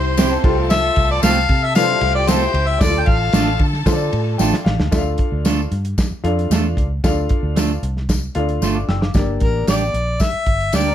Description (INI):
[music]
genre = uptempo 1960s-style soul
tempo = 114 BPM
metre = 4/4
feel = straight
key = unclear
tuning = A4 = 440 Hz
[part]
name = mellow harmonica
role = melody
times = 0.0-3.6, 9.4-10.9 s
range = Bb4 to G5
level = -19 LUFS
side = left 3 dB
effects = none
[part]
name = rich studio string section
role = second line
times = 0.0-4.9 s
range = G4 to C6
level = -28 LUFS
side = left 2 dB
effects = none
[part]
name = warm grand piano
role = accompaniment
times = 0.0-9.9 s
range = Bb3 to E6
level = -24 LUFS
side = left 2 dB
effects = none
[part]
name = vintage muted fingered electric bass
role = bass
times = 0.0-10.9 s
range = F#1 to D3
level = -21 LUFS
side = equal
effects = none
[part]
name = electric guitar through a small old amp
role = riff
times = 0.2-2.8, 10.9 s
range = F3 to C5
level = -25 LUFS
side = left 3 dB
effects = spring reverb
[part]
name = electric guitar at the edge of break-up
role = stabs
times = 0.2-10.9 s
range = G3 to C5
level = -21 LUFS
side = right 5 dB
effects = none
[part]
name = warm soul drum kit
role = drums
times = 0.2-10.9 s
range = crash cymbal, hi-hat, kick drum, ride cymbal, snare drum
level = -19 LUFS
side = equal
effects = none
[part]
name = tambourine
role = percussion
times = 0.2-10.9 s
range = none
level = -30 LUFS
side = left 7 dB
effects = none
[sound]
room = light reverb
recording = none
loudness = -15 LUFS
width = side -10 dB against mid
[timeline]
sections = 0.0-4.9 A section; 4.9-9.1 B section; 9.1-10.9 C section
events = grand piano fill 4.1-4.9; drum fill 4.4-4.9, 8.6-9.1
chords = 0.4 F/C; 2.8 Dm; 9.1 Gm